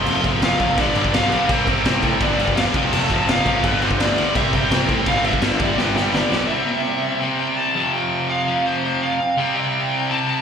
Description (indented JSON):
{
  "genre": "punk rock",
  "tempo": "168 BPM",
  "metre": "4/4",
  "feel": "straight",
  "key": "unclear",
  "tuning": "A4 = 444 Hz",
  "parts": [
    { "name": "smooth overdriven lead guitar", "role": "melody", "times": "0.0-10.4 s", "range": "B4 to C6", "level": "-23 LUFS", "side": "equal", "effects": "slapback echo, ping-pong delay" },
    { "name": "distorted electric guitar", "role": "riff", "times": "0.0-10.4 s", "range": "F2 to C4", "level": "-23 LUFS", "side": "left 12 dB", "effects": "distortion, slapback echo" },
    { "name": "overdriven electric guitar", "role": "riff", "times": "0.0-10.4 s", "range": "F2 to C4", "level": "-24 LUFS", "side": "right 10 dB", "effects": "slapback echo" },
    { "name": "overdriven picked electric bass", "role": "bass", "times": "0.1-6.4 s", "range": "E1 to A2", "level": "-25 LUFS", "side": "equal", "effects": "none" },
    { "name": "raw garage drum kit", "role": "drums", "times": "0.1-6.4 s", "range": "crash cymbal, kick drum, snare drum", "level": "-22 LUFS", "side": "equal", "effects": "none" },
    { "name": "tight distorted guitar", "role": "riff", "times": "0.8-6.5 s", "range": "F2 to C4", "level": "-26 LUFS", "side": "right 2 dB", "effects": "distortion, slapback echo" }
  ],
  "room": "light reverb",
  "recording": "live gig heard through the venue's PA, recital hall reverb",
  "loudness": "-16 LUFS",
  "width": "side -7 dB against mid",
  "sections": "0.0-6.5 A section; 6.5-10.4 B section",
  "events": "drum fill 5.8-6.5; half time 6.5-10.4",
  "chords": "0.0 F5; 0.8 G; 1.5 C5; 2.2 G5; 2.7 F; 3.6 G5; 4.3 C5; 5.1 G5; 5.6 G; 6.5 C; 7.8 F5; 9.4 C5"
}